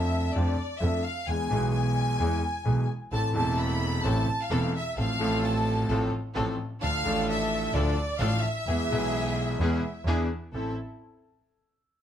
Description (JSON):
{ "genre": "tango", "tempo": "130 BPM", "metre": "4/4", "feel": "rubato", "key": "A harmonic minor", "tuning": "A4 = 440 Hz", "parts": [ { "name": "clear studio violin section", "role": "second line", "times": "0.0-10.0 s", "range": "D5 to B5", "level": "-31 LUFS", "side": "equal", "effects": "none" }, { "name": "warm concert grand piano", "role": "accompaniment", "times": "0.0-10.7 s", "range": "E1 to A4", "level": "-29 LUFS", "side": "left 1 dB", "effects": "none" }, { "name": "rich double bass", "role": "bass", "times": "0.0-10.7 s", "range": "E1 to F2", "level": "-29 LUFS", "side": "right 1 dB", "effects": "none" }, { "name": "rich chamber string section", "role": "stabs", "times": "3.1-10.7 s", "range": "B3 to A4", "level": "-36 LUFS", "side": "equal", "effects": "none" } ], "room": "moderate studio reverb, RT60 0.9 s", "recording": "none", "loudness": "-25 LUFS", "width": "side -10 dB against mid", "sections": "0.0-10.5 A section; 10.5-12.0 B section", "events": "violin section solo 0.0-10.5", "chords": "0.0 Dm/F; 1.3 E; 3.1 Am; 5.0 F/A; 6.8 Dm; 8.7 E; 10.1 E7; 10.5 Am" }